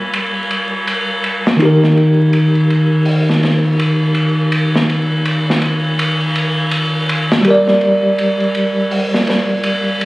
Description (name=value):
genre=trip hop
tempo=82 BPM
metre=4/4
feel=swing 59% on 16ths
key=unclear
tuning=A4 = 440 Hz
part: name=bell-like tine electric piano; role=accompaniment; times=0.0-10.1 s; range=Eb3 to D5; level=-14 LUFS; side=equal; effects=tremolo, tape echo
part: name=crunchy breakbeat drum kit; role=drums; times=0.1-10.1 s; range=hi-hat, ride cymbal, snare drum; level=-18 LUFS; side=equal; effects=low-pass filter on cymbals, vintage 12-bit sampler grit, low-pass filter on hats, low-pass filter on snare, low-pass filter on room
room=moderate echo chamber reverb, RT60 1.9 s, small room ambience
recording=recorded on a phone in the room, club reverb, vinyl crackle, compression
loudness=-12 LUFS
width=side -20 dB against mid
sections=0.0-10.1 A section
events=none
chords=0.0 Gm; 1.6 Eb; 7.5 Gm